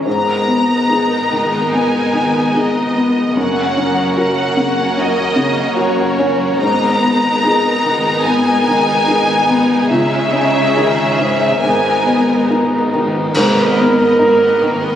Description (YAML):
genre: cinematic, emotional film score for orchestra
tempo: 72 BPM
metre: 4/4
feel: rubato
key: G# minor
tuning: A4 = 440 Hz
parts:
  - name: warm studio violin section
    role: second line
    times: 0.0-15.0 s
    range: D#4 to B4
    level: -22 LUFS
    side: equal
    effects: none
  - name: felt-muted upright piano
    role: accompaniment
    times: 0.0-15.0 s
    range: C#2 to A#4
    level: -17 LUFS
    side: left 2 dB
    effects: none
  - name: rich studio viola section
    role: accompaniment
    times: 0.0-15.0 s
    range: G#3 to C#4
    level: -20 LUFS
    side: right 2 dB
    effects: none
  - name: clear studio cello section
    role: bass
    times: 0.0-14.9 s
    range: F#2 to C#3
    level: -26 LUFS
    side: right 3 dB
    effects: none
  - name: rich studio violin section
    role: melody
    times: 0.1-15.0 s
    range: B4 to A#5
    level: -18 LUFS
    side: left 2 dB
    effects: none
  - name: rich studio double bass section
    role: bass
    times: 0.1-14.9 s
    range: F#1 to C#2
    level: -27 LUFS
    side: right 3 dB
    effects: none
  - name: cymbal swell, clash cymbals and concert bass drum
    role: percussion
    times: 9.9-15.0 s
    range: none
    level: -24 LUFS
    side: equal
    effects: none
  - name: dark clarinet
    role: second line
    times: 13.3-15.0 s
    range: A#4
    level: -14 LUFS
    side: right 2 dB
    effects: none
room: moderate concert hall reverb, RT60 2.0 s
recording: recorded on a phone in the room, studio reverb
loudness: -12 LUFS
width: side -10 dB against mid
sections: 0.0-13.4 A section; 13.4-15.0 A section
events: band accent 13.4-14.2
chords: 0.1 G#madd9; 3.4 F#; 6.6 G#madd9; 9.9 C#madd9; 11.6 G#madd9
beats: | 0.06 0.90 1.73 2.54 | 3.36 4.17 4.97 5.78 | 6.62 7.44 8.27 9.08 | 9.91 10.76 11.62 12.49 | 13.35 14.19